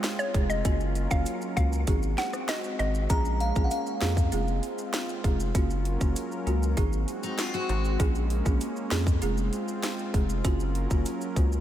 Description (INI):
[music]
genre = dancehall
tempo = 98 BPM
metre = 4/4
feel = straight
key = Bb minor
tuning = A4 = 440 Hz
[part]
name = folk marimba with medium mallets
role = accompaniment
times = 0.0-11.5 s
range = Ab3 to Ab4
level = -33 LUFS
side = right 2 dB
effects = sidechain pumping
[part]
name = warm analog pad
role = sustained chords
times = 0.0-11.6 s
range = Gb3 to Bb4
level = -35 LUFS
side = equal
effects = chorus, sidechain pumping
[part]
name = island pop drum kit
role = drums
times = 0.0-11.5 s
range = hi-hat, kick drum, rim click, snare drum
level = -28 LUFS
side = equal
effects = none
[part]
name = maracas and timbales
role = percussion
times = 0.0-11.6 s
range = none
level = -45 LUFS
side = right 2 dB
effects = none
[part]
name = mallet-like synth pluck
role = melody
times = 0.2-2.9 s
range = Db5 to Gb5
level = -33 LUFS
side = equal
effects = chorus, tape echo
[part]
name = saturated sub bass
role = bass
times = 0.3-11.6 s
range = F1 to F2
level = -28 LUFS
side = equal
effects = none
[part]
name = glassy synth bell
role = second line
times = 3.1-4.9 s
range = F5 to Bb5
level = -35 LUFS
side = equal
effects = chorus, tape echo
[part]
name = picked steel-string acoustic guitar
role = arpeggios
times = 7.2-8.0 s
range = Eb4 to Gb4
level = -36 LUFS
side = left 5 dB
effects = wide subtle chorus, tape echo
[sound]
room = light reverb, digital ambience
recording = none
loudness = -25 LUFS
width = side -12 dB against mid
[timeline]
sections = 0.0-11.6 A section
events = none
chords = 0.0 Fm; 0.7 Gbmaj7; 1.9 Ab7; 3.1 Bbm7; 4.3 Fm; 5.5 Gbmaj7; 6.8 Ab7; 8.0 Bbm7; 9.2 Fm; 10.4 Gbmaj7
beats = 0.04 | 0.65 1.26 1.88 2.49 | 3.10 3.71 4.32 4.94 | 5.55 6.16 6.77 7.38 | 8.00 8.61 9.22 9.83 | 10.45 11.06